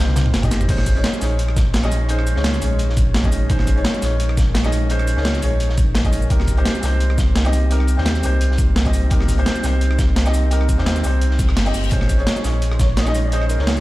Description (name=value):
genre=liquid drum and bass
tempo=171 BPM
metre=4/4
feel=swing 54% on 16ths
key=Bb dorian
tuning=A4 = 440 Hz
part: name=felt-muted upright piano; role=accompaniment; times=0.0-13.8 s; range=C4 to Eb5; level=-25 LUFS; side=equal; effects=dub echo
part: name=glassy FM pad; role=sustained chords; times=0.0-13.8 s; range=Ab3 to C6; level=-31 LUFS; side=left 1 dB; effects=ensemble chorus, built-in reverb
part: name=sub bass with octave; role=bass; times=0.0-13.8 s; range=G1 to Eb2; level=-18 LUFS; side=equal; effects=none
part: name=crunchy breakbeat drum kit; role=drums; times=0.0-13.8 s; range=hi-hat, snare drum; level=-32 LUFS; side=equal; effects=high-pass filter on hats, high-pass filter on snare, high-pass filter on room
part: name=breakbeat sampler-style drum kit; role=drums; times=0.1-13.8 s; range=crash cymbal, hi-hat, rim click, shaker, snare drum, toms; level=-24 LUFS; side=equal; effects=overdrive
part: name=electronic kick drum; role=drums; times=0.4-12.9 s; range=none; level=-19 LUFS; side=equal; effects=overdrive
part: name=reverse cymbal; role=sound effects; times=11.3-11.9 s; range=none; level=-33 LUFS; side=left 4 dB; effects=none
part: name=breathy flute-like synth lead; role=melody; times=12.8-13.7 s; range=Bb4 to Eb5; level=-27 LUFS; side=equal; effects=ensemble chorus, dub echo
room=light reverb, digital ambience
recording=played on a big sound system in a bare room, large studio reverb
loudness=-15 LUFS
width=side -18 dB against mid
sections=0.7-13.8 A section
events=drum fill 0.0-0.7; drop 0.7-13.8; reverse cymbal 11.3-11.9; kick drops out 11.6-11.9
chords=0.0 Cm7; 0.7 Bbm11; 6.3 Cm7; 11.9 Bbm11